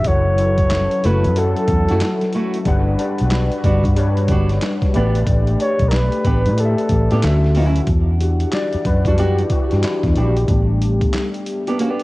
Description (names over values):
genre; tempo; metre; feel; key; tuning
R&B, neo-soul; 92 BPM; 4/4; swing 63% on 16ths; E dorian; A4 = 443 Hz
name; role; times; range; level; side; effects
breathy flugelhorn; melody; 0.0-7.6 s; A4 to C#5; -22 LUFS; equal; cassette tape
overdriven tine electric piano; accompaniment; 0.0-12.0 s; D3 to F#5; -22 LUFS; left 2 dB; analog chorus
warm analog pad; sustained chords; 0.0-12.0 s; D3 to F#5; -30 LUFS; right 1 dB; chorus
boom bap sampler-style drum kit; drums; 0.0-12.0 s; handclaps, hi-hat, kick drum, snare drum; -21 LUFS; equal; none
vintage muted fingered electric bass; bass; 0.1-11.1 s; F#1 to A2; -17 LUFS; equal; none
flamenco guitar; second line; 1.0-12.0 s; F#3 to G4; -24 LUFS; right 2 dB; tape echo
room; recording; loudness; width
digital ambience; home recording on cassette; -15 LUFS; side -20 dB against mid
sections
0.0-7.9 A section; 7.9-12.0 B section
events
tine electric piano solo 7.9-12.0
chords
0.0 F#m7; 2.7 Gmaj7#11; 4.9 A9sus4; 7.2 Dmaj9; 7.9 Em9; 10.5 A9sus4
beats
| 0.05 0.70 1.35 2.00 | 2.66 3.31 3.96 4.61 | 5.26 5.92 6.57 7.22 | 7.87 8.53 9.18 9.83 | 10.48 11.13 11.79